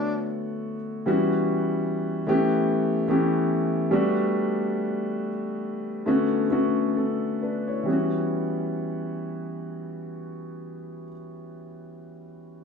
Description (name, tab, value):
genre	soul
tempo	64-75 BPM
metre	4/4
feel	swing 54% on 16ths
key	E dorian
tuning	A4 = 440 Hz
part	warm concert grand piano	accompaniment	0.0-12.6 s	D3 to C#5	-24 LUFS	left 1 dB	none
room	wet studio reverb, RT60 0.8 s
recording	band playing live in one room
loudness	-23 LUFS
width	side -5 dB against mid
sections	0.0-1.1 A section; 1.1-7.9 B section; 7.9-11.6 C section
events	slowing down 1.1-7.9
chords	0.0 Bm9; 1.1 Em69; 2.3 A7; 3.9 Gmaj7; 6.1 Bm9; 7.9 Em69